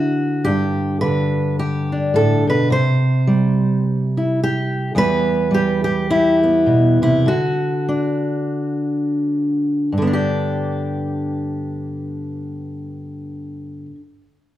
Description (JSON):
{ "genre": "folk, solo fingerstyle acoustic guitar", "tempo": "81-107 BPM", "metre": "4/4", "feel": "swing 59% on 8ths", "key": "G major", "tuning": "A4 = 438 Hz", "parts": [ { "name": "fingerpicked steel-string acoustic guitar", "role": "solo", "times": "0.0-14.0 s", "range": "E2 to C5", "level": "-17 LUFS", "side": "equal", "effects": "none" } ], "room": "wet large studio reverb, RT60 1.2 s", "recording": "band playing live in one room", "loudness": "-16 LUFS", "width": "side -13 dB against mid", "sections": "0.0-9.9 A section; 9.9-12.9 B section", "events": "slowing down 5.0-9.9", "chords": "0.5 G; 2.7 C5; 5.0 Em; 7.3 N.C.; 9.9 G" }